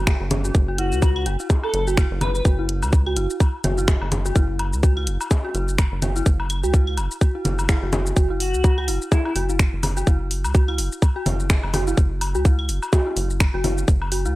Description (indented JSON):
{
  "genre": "minimal techno",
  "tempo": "126 BPM",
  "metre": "4/4",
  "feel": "swing 57% on 16ths",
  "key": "unclear",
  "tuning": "A4 = 440 Hz",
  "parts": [
    { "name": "rubbery square bass", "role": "bass", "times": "0.0-14.4 s", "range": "F#1 to C#2", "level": "-24 LUFS", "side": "equal", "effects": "tube saturation, sidechain pumping" },
    { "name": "dark detuned synth bell", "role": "riff", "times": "0.1-14.3 s", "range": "C#4 to F#4", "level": "-28 LUFS", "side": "right 1 dB", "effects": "chorus, phaser, sidechain pumping, tape echo" },
    { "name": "electronic kick drum", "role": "drums", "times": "0.1-14.0 s", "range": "none", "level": "-17 LUFS", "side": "equal", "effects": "none" },
    { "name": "punchy analog drum machine", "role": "drums", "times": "0.1-14.3 s", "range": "finger snaps, hi-hat, shaker", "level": "-28 LUFS", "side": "equal", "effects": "none" },
    { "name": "bongos, congas, woodblock and claves", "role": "percussion", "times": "0.1-14.1 s", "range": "none", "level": "-28 LUFS", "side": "left 1 dB", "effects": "tape echo" },
    { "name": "airy dreamy lead", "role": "melody", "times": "0.8-2.4, 8.4-9.3 s", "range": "E4 to B4", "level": "-26 LUFS", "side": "left 2 dB", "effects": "chorus, tape echo" }
  ],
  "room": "digital ambience",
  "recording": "dry, gritty hardware recording",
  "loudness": "-18 LUFS",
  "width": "side -18 dB against mid",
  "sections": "0.0-14.4 A section",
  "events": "none",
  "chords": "0.0 F#5"
}